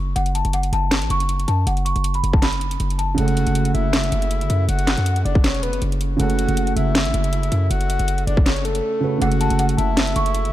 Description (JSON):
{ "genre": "hip hop, trap", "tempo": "159 BPM", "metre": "4/4", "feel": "half-time", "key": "F# minor", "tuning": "A4 = 440 Hz", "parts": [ { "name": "worn celesta", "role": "melody", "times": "0.0-3.1, 9.2-10.5 s", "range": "F#5 to C#6", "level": "-25 LUFS", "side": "left 1 dB", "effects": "none" }, { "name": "hard-hitting 808-style bass", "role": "bass", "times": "0.0-10.5 s", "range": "E1 to F#2", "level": "-21 LUFS", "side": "equal", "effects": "none" }, { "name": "trap drum kit", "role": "drums", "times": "0.2-10.5 s", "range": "handclaps, hi-hat, kick drum, snare drum", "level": "-22 LUFS", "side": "equal", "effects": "none" }, { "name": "dark concert grand piano", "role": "accompaniment", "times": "3.1-10.5 s", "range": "C#3 to B4", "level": "-24 LUFS", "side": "right 3 dB", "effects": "none" }, { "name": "breathy flute-like synth lead", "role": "second line", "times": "3.2-10.5 s", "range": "A4 to F#5", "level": "-25 LUFS", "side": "left 2 dB", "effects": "chorus, tape echo" } ], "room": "digital ambience", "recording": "dark, warm production", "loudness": "-17 LUFS", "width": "side -14 dB against mid", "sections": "0.0-10.5 A section", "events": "silent gap 8.8-9.2", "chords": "0.0 F#m" }